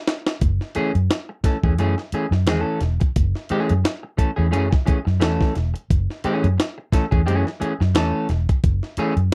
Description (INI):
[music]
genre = funk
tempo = 88 BPM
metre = 4/4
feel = swing 56% on 16ths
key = F# minor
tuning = A4 = 440 Hz
[part]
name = breakbeat sampler-style drum kit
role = drums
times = 0.1-9.3 s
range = hi-hat, kick drum, snare drum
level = -23 LUFS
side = equal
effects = none
[part]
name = vintage muted fingered electric bass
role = bass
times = 0.4-9.3 s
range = E1 to F#2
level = -23 LUFS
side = equal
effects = none
[part]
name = clean electric guitar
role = accompaniment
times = 0.8-9.1 s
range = E3 to A4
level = -25 LUFS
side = equal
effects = none
[sound]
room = little or no reverb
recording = dry, close 1970s-style studio recording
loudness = -21 LUFS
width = mono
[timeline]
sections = 0.4-9.3 A section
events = drum fill 0.0-0.4; band accent 0.0-0.4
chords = 0.4 F#m9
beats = | 0.42 1.10 1.79 2.48 | 3.16 3.85 4.53 5.21 | 5.90 6.58 7.27 7.95 | 8.64